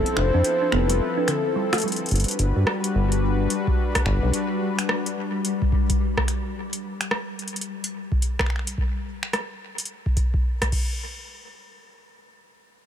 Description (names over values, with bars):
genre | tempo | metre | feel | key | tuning
IDM | 108 BPM | 4/4 | swing 62% on 16ths | G major | A4 = 439 Hz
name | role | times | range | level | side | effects
warbly nostalgic lead | melody | 0.0-1.8 s | A4 to C5 | -26 LUFS | left 1 dB | wide subtle chorus, ping-pong delay
warm analog pad | sustained chords | 0.0-6.5 s | F3 to B4 | -29 LUFS | left 1 dB | chorus, vintage 12-bit sampler grit, sidechain pumping
thumb-piano-like synth pluck | arpeggios | 0.0-2.0 s | D3 to D4 | -29 LUFS | right 5 dB | chorus, ping-pong delay
deep acid bass | bass | 0.0-4.3 s | F1 to G2 | -21 LUFS | equal | none
pulsing gated texture | texture | 0.0-8.8 s | G3 to A5 | -31 LUFS | left 6 dB | chorus, built-in reverb
electro analog drum machine | drums | 0.1-10.9 s | crash cymbal, finger snaps, hi-hat, rim click | -28 LUFS | equal | overdrive, tape echo
electronic kick drum | drums | 3.7-10.9 s | none | -23 LUFS | equal | overdrive
room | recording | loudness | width
little or no reverb | none | -21 LUFS | side -9 dB against mid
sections
0.0-2.1 A section; 2.1-11.0 B section; 11.0-12.9 C section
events
break 1.0-2.1; drum fill 1.8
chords
0.0 Fmaj7; 2.1 Gmaj7; 6.6 N.C.